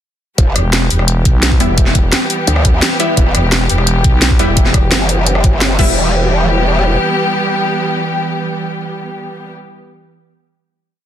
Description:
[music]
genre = dark technical drum and bass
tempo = 172 BPM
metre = 4/4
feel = straight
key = E minor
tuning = A4 = 442 Hz
[part]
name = muted symphonic string section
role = sustained chords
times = 0.4-9.5 s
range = E3 to G4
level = -18 LUFS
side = equal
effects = sidechain pumping
[part]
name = growl bass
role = bass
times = 0.4-7.0 s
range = E1 to D2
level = -14 LUFS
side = equal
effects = chorus, overdrive, sidechain pumping
[part]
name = drum and bass drum kit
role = drums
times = 0.4-5.9 s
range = crash cymbal, hi-hat, rim click, snare drum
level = -15 LUFS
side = equal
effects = none
[part]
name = electronic kick drum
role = drums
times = 0.4-5.9 s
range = none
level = -12 LUFS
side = equal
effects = none
[part]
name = growling FM bass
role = bass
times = 0.6-4.9 s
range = E1 to B1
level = -14 LUFS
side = equal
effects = none
[part]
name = orchestra-hit-like synth stab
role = stabs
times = 1.6-10.2 s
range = G3 to E4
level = -20 LUFS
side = left 1 dB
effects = built-in reverb, tape echo
[sound]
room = light reverb, digital ambience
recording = dense, heavily limited modern master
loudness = -11 LUFS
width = side -10 dB against mid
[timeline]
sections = 0.4-6.0 drop; 6.0-8.8 final hit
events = drop 0.4-6.0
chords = 0.4 Em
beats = | 0.38 0.73 1.08 1.43 | 1.78 2.13 2.48 2.82 | 3.17 3.52 3.87 4.22 | 4.57 4.92 5.27 5.61 | 5.96 6.31 6.66 7.01 | 7.36 7.71 8.06 8.40

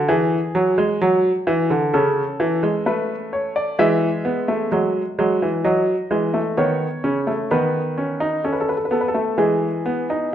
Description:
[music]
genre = classical, baroque-style 3-part fugue for grand piano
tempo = 64 BPM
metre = 4/4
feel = straight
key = unclear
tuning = A4 = 440 Hz
[part]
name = warm baby grand piano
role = solo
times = 0.0-10.3 s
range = C#3 to E5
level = -18 LUFS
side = equal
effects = none
[sound]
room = wet recital hall reverb, RT60 1.3 s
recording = none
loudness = -18 LUFS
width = side -10 dB against mid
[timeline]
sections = 0.0-10.3 A section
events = none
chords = 0.1 E7; 1.9 A/C#; 3.8 E; 5.6 F#m; 7.5 B7/D#; 9.4 E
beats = | 0.09 1.01 1.93 2.85 | 3.78 4.71 5.65 6.58 | 7.51 8.44 9.38 10.32

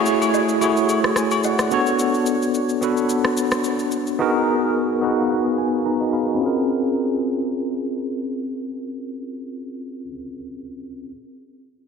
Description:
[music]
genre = amapiano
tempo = 109 BPM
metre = 4/4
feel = swing 55% on 16ths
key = Bb phrygian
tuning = A4 = 439 Hz
[part]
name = bell-like tine electric piano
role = accompaniment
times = 0.0-11.1 s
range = A3 to Cb6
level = -20 LUFS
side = equal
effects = medium stereo tremolo, low-pass filter
[part]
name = downlifter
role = sound effects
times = 0.0-2.0 s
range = none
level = -38 LUFS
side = equal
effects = none
[part]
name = electronic shaker and rim click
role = drums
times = 0.1-4.2 s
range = none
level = -27 LUFS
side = left 1 dB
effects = none
[part]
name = agogo bells and woodblock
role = percussion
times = 0.2-1.6 s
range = none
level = -27 LUFS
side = left 6 dB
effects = none
[sound]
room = wet lush hall reverb, RT60 2.7 s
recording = dreamy mix soaked in reverb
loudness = -18 LUFS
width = side -6 dB against mid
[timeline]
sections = 0.0-6.4 A section; 6.4-8.6 B section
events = filter sweep on tine electric piano 0.0-6.4; tine electric piano fill 0.9-2.0, 4.7-6.4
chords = 0.0 Gbm9; 1.7 Bm9; 4.2 Abm9; 6.4 Bbm9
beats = 0.34 0.89 1.44 | 1.99 2.54 3.09 3.64 | 4.19 4.74 5.29 5.84 | 6.39 6.95 7.50 8.05

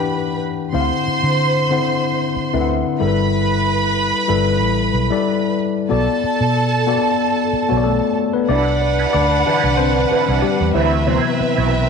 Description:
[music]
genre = soul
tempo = 93 BPM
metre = 4/4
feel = swing 54% on 16ths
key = unclear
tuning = A4 = 437 Hz
[part]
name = warm studio violin section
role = second line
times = 0.0-11.9 s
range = C4 to C6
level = -20 LUFS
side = right 3 dB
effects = none
[part]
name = tine electric piano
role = accompaniment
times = 0.0-11.9 s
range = C3 to G5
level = -19 LUFS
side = left 6 dB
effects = none
[part]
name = vintage muted fingered electric bass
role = bass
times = 0.7-11.9 s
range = G1 to D3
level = -20 LUFS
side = right 3 dB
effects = none
[part]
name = electric guitar through a small old amp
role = riff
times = 8.5-11.7 s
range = F#3 to C5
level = -23 LUFS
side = right 10 dB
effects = wah
[part]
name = glockenspiel with soft plastic mallets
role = texture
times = 9.1-11.0 s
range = B5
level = -28 LUFS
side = left 6 dB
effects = none
[sound]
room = wet echo chamber reverb, RT60 2.2 s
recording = 1960s-style stereo with parts hard left and right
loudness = -15 LUFS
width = side -5 dB against mid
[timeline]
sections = 0.0-8.5 A section; 8.5-11.9 B section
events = tine electric piano solo 8.5-11.9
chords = 0.0 Em9; 0.7 D13; 3.0 G69; 5.9 Bm7; 8.5 Cmaj9; 10.8 D13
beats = 0.10 | 0.75 1.39 2.04 2.69 | 3.33 3.98 4.62 5.27 | 5.91 6.56 7.20 7.85 | 8.49 9.14 9.78 10.43 | 11.07 11.72

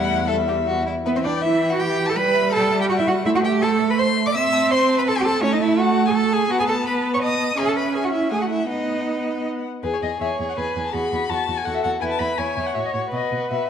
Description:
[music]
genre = quick classical-period movement for string quartet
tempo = 165 BPM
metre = 3/4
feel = rubato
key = E minor, E major from 5.4 s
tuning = A4 = 440 Hz
[part]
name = rich violin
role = melody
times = 0.0-13.7 s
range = B4 to C6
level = -28 LUFS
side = left 9 dB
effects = none
[part]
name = rich violin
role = second line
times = 0.0-13.7 s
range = E4 to E6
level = -26 LUFS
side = left 3 dB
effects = none
[part]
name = warm viola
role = accompaniment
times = 0.0-13.7 s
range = E3 to C#5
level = -23 LUFS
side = right 3 dB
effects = none
[part]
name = rich cello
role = bass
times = 0.0-13.6 s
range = E2 to E5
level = -23 LUFS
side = right 3 dB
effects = none
[sound]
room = moderate recital hall reverb, RT60 1.6 s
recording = dark, warm production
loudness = -18 LUFS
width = side -8 dB against mid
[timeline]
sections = 0.0-1.1 A section; 1.1-9.8 A section; 9.8-13.7 B section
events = none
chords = 0.0 Em; 2.2 Em/G; 3.3 Am; 4.3 Am/C; 5.4 F#m7/A; 6.5 B7; 7.6 C#m7; 8.3 F#m7/A; 8.7 B; 9.8 E; 10.9 F#m11/E; 12.0 E5; 12.7 F#m/A; 13.1 B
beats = 0.28 0.67 | 1.06 1.43 1.80 | 2.16 2.52 2.89 | 3.26 3.62 3.98 | 4.34 4.71 5.07 | 5.43 5.79 6.15 | 6.50 6.86 7.22 | 7.58 7.94 8.31 | 8.69 9.07 9.46 | 9.84 10.21 10.57 | 10.94 11.30 11.66 | 12.01 12.38 12.75 | 13.12 13.50

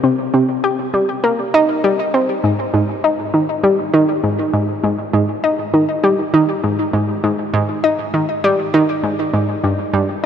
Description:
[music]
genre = ambient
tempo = 100 BPM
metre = 4/4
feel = straight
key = unclear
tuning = A4 = 440 Hz
[part]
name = analog pluck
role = solo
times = 0.0-10.0 s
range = G2 to G4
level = -14 LUFS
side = equal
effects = chorus, tape echo
[sound]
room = wet huge ambient reverb, RT60 7.8 s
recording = none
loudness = -14 LUFS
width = side -8 dB against mid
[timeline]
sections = 0.0-10.3 A section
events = none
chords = none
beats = | 0.04 0.64 1.24 1.84 | 2.44 3.04 3.64 4.24 | 4.84 5.44 6.04 6.64 | 7.24 7.84 8.44 9.04 | 9.64

